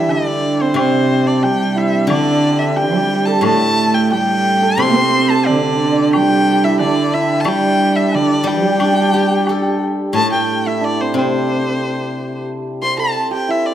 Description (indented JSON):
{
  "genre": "chinese traditional, Chinese chamber ensemble",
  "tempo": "90 BPM",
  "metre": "2/4",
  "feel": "straight",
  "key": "G zhi mode",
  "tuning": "A4 = 440 Hz",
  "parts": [
    { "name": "clear erhu", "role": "melody", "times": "0.0-13.7 s", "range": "C5 to C6", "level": "-19 LUFS", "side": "left 2 dB", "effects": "none" },
    { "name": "hammered dulcimer", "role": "second line", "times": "0.0-13.7 s", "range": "C4 to C5", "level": "-18 LUFS", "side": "right 3 dB", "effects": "none" },
    { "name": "rich cello", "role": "second line", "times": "0.0-9.8 s", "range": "C3 to C4", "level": "-18 LUFS", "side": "right 3 dB", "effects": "none" },
    { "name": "steel-string zither", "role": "accompaniment", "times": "0.0-13.1 s", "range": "A2 to A4", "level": "-20 LUFS", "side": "left 2 dB", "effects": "none" },
    { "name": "woodblock", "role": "percussion", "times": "0.1-9.6 s", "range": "none", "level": "-28 LUFS", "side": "left 4 dB", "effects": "none" }
  ],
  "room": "moderate recital hall reverb, RT60 1.6 s",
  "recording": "none",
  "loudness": "-13 LUFS",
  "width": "side -10 dB against mid",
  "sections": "0.0-10.2 A section; 10.2-13.7 B section",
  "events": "none",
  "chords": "none"
}